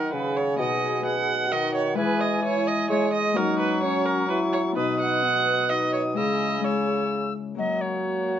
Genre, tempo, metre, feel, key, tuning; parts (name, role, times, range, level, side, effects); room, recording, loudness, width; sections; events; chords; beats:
classical, renaissance-style consort dance; 129 BPM; 3/4; straight; A4 = 444 Hz
mellow alto recorder; melody; 0.0-8.4 s; C#5 to E6; -30 LUFS; left 4 dB
warm viola; second line; 0.0-8.4 s; F#4 to F#5; -26 LUFS; right 5 dB
Celtic harp; accompaniment; 0.0-8.4 s; B2 to G#4; -30 LUFS; left 8 dB
warm trombone; accompaniment; 0.0-8.4 s; A#3 to G#4; -30 LUFS; left 1 dB
mellow bassoon; bass; 0.0-8.4 s; B2 to G#3; -28 LUFS; right 2 dB
moderate large studio reverb, RT60 0.9 s; nothing above 7.6 kHz; -22 LUFS; side -10 dB against mid
0.0-7.6 A section
0.0 D#m; 0.6 B; 2.0 E; 3.4 F#; 4.8 B; 6.2 C#m; 7.6 F#
0.13 | 0.59 1.05 1.51 | 1.98 2.44 2.90 | 3.36 3.83 4.29 | 4.76 5.23 5.70 | 6.17 6.64 7.11 | 7.58 8.05